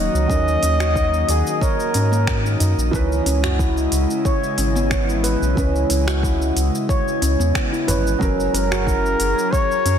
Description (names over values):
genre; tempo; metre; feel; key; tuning
organic downtempo; 91 BPM; 4/4; swing 53% on 16ths; C# dorian; A4 = 440 Hz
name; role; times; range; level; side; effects
trumpet with bucket mute; melody; 0.0-2.6, 8.5-10.0 s; G#4 to D#5; -23 LUFS; equal; digital delay
felt-muted upright piano; accompaniment; 0.0-10.0 s; E3 to C#5; -28 LUFS; right 3 dB; sidechain pumping, tape echo
airy breathy pad; sustained chords; 0.0-10.0 s; C#3 to A#5; -26 LUFS; left 1 dB; chorus, sidechain pumping
handpan; arpeggios; 0.0-10.0 s; A#3 to C#5; -24 LUFS; equal; tape echo
warm sub bass; bass; 0.0-10.0 s; F#1 to G#2; -20 LUFS; equal; sidechain pumping
organic electronic drum kit; drums; 0.2-10.0 s; cabasa, finger snaps, hi-hat; -28 LUFS; equal; overdrive, soft clipping on snare
electronic kick drum; drums; 0.3-9.7 s; none; -23 LUFS; equal; overdrive
udu; percussion; 2.6-3.6, 7.9-8.8 s; none; -29 LUFS; right 1 dB; none
room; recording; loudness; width
light reverb, small room ambience; dense, heavily limited modern master; -16 LUFS; side -8 dB against mid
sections
0.0-10.0 A section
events
none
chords
0.0 D#m; 2.9 C#m7; 8.2 F#